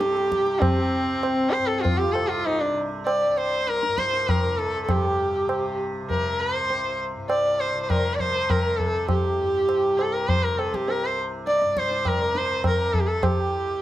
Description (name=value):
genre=indian classical, Hindustani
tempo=100 BPM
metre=7/4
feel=straight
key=C raga kafi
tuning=A4 = 440 Hz
part: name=warm sarangi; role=melody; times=0.0-13.8 s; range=C4 to D5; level=-23 LUFS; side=equal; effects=none
part: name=hand-pumped harmonium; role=second line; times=0.0-13.8 s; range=C4 to Eb5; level=-30 LUFS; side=left 1 dB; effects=none
part: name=tanpura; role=drone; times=0.0-13.8 s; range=C2 to C3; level=-34 LUFS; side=equal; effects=none
part: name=tabla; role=percussion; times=0.0-13.4 s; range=none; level=-26 LUFS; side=equal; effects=none
room=moderate small room reverb, RT60 0.5 s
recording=none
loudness=-21 LUFS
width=side -14 dB against mid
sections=0.0-4.9 A section; 4.9-13.8 B section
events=speeding up 0.0-13.8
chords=none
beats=0.00 | 0.62 1.23 1.85 2.46 3.07 3.68 4.28 | 4.89 5.49 6.10 6.70 7.30 7.90 8.50 | 9.09 9.69 10.28 10.88 11.47 12.05 12.64 | 13.23 13.82